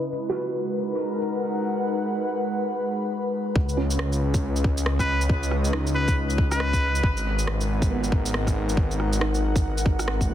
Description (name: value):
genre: future garage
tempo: 138 BPM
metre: 4/4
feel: swing 61% on 16ths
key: G# minor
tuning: A4 = 440 Hz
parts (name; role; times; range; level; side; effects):
- felt-muted upright piano; accompaniment; 0.0-10.3 s; G#3 to F#4; -33 LUFS; right 4 dB; sidechain pumping, tape echo
- airy breathy pad; sustained chords; 0.0-10.3 s; C#3 to F#5; -28 LUFS; left 1 dB; chorus, sidechain pumping
- swelling detuned saw bass; bass; 3.6-10.3 s; G#1 to C#2; -25 LUFS; equal; sidechain pumping
- electronic kick drum; drums; 3.6-10.3 s; none; -23 LUFS; equal; small room reverb
- electronic shaker and rim click; drums; 3.7-10.3 s; none; -31 LUFS; right 1 dB; small room reverb
- trumpet with straight mute; melody; 5.0-7.1 s; B4; -28 LUFS; equal; vintage 12-bit sampler grit, tape echo
room: moderate recital hall reverb, RT60 1.6 s, digital ambience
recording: dense, heavily limited modern master, low-pass filter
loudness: -22 LUFS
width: side -11 dB against mid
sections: 0.0-3.6 A section; 3.6-10.3 B section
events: filter sweep on analog synth pad 0.0-3.6; filter sweep 0.0-3.6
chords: 0.1 G#m7; 3.6 C#sus2; 7.0 G#m7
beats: | 0.08 0.51 0.95 1.38 | 1.82 2.25 2.69 3.12 | 3.56 3.99 4.42 4.86 | 5.29 5.73 6.16 6.60 | 7.03 7.47 7.90 8.34 | 8.77 9.21 9.64 10.08